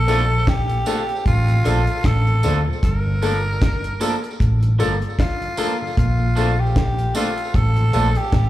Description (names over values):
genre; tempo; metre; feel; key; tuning
lovers rock reggae; 76 BPM; 4/4; swing 57% on 16ths; Bb major; A4 = 442 Hz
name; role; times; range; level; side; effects
raspy tenor saxophone; melody; 0.0-8.5 s; F4 to Bb4; -24 LUFS; equal; tape echo, slapback echo
hollow-body short-scale fingered electric bass; bass; 0.0-8.5 s; G1 to D2; -18 LUFS; equal; none
mellow tonewheel organ; accompaniment; 0.1-8.0 s; G2 to F4; -32 LUFS; left 2 dB; none
warm baby grand piano; accompaniment; 0.1-8.2 s; Bb3 to A4; -28 LUFS; left 5 dB; tape echo, slapback echo
twangy electric guitar; stabs; 0.1-8.1 s; F3 to A4; -27 LUFS; right 5 dB; wide subtle chorus, slapback echo
deep reggae drum kit; drums; 0.1-8.5 s; hi-hat, kick drum, snare drum; -20 LUFS; equal; none
tambourine; percussion; 0.1-8.1 s; none; -38 LUFS; right 4 dB; tape echo
room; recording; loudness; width
small room ambience; live gig heard through the venue's PA, club reverb; -17 LUFS; side -14 dB against mid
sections
0.0-8.5 A section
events
none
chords
0.0 Bbmaj7; 2.8 Gm9; 6.0 Bbmaj7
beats
0.47 1.26 2.04 | 2.83 3.62 4.40 5.19 | 5.97 6.76 7.54 8.33